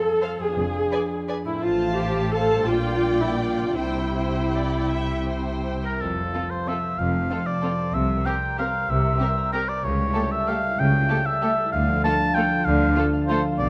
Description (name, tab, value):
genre	classical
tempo	151-209 BPM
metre	3/4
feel	rubato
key	F major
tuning	A4 = 440 Hz
part	muted chamber viola section	accompaniment	0.0-13.4 s	A3 to A4	-28 LUFS	equal	none
part	concert harp	arpeggios	0.0-13.7 s	F2 to Bb5	-31 LUFS	equal	none
part	muted chamber violin section	melody	0.2-13.4 s	A4 to A5	-38 LUFS	equal	none
part	muted chamber violin section	second line	0.2-13.4 s	F4 to G5	-36 LUFS	equal	none
part	muted chamber cello section	bass	0.6-13.7 s	F2 to D3	-31 LUFS	equal	none
part	muted chamber double bass section	bass	0.6-13.7 s	F1 to D2	-30 LUFS	equal	none
part	warm oboe	second line	5.8-13.7 s	A4 to A5	-27 LUFS	equal	none
room	light reverb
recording	close, detailed microphones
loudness	-23 LUFS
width	mono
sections	0.0-6.0 A section; 6.0-13.7 B section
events	none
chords	0.0 F; 0.6 Fdim7; 1.6 F/A; 2.7 Gm/Bb; 3.8 C; 6.0 F; 7.9 C7; 9.8 A7/C#; 11.7 Dm